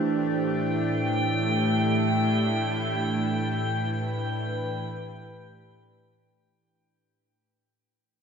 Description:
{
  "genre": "ambient",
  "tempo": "free time",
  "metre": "none",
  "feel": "none",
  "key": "unclear",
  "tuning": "A4 = 440 Hz",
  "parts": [
    { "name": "evolving wavetable pad", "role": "sustained chords", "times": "0.0-6.6 s", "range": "A2 to B4", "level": "-26 LUFS", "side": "equal", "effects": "chorus, built-in reverb, shimmer reverb" },
    { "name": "bowed-like drone", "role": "drone", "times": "1.2-6.7 s", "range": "A3 to E4", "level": "-31 LUFS", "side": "right 2 dB", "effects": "built-in reverb" },
    { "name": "drifting glass-harmonics texture", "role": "texture", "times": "0.4-6.6 s", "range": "G5", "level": "-31 LUFS", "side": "left 1 dB", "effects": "chorus, built-in reverb, shimmer reverb" }
  ],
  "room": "wet concert hall reverb, RT60 2.1 s",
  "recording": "none",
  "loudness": "-24 LUFS",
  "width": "side -6 dB against mid",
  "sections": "0.0-6.6 A section",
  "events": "fade-out 2.2-6.6",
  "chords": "0.0 G69/A",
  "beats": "free time"
}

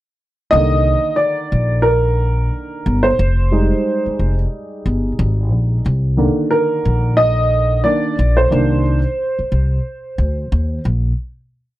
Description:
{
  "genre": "hip hop, jazz-hop",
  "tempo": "90 BPM",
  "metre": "4/4",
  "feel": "swing 60% on 16ths",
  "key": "C minor",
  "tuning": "A4 = 440 Hz",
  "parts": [
    { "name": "dark upright piano", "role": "accompaniment", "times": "0.5-10.8 s", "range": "D3 to Eb5", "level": "-17 LUFS", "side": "right 1 dB", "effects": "none" },
    { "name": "upright bass", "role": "bass", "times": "0.5-11.1 s", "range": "F1 to Eb2", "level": "-16 LUFS", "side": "equal", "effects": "none" }
  ],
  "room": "little or no reverb",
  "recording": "dark, warm production",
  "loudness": "-14 LUFS",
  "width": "side -15 dB against mid",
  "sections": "0.5-11.2 A section",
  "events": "upright piano solo 0.5-11.2",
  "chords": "0.5 Cm9; 3.2 Fm9; 5.9 Cm9",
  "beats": "| 0.52 1.19 1.85 2.52 | 3.19 3.85 4.52 5.18 | 5.85 6.52 7.18 7.85 | 8.52 9.19 9.85 10.52"
}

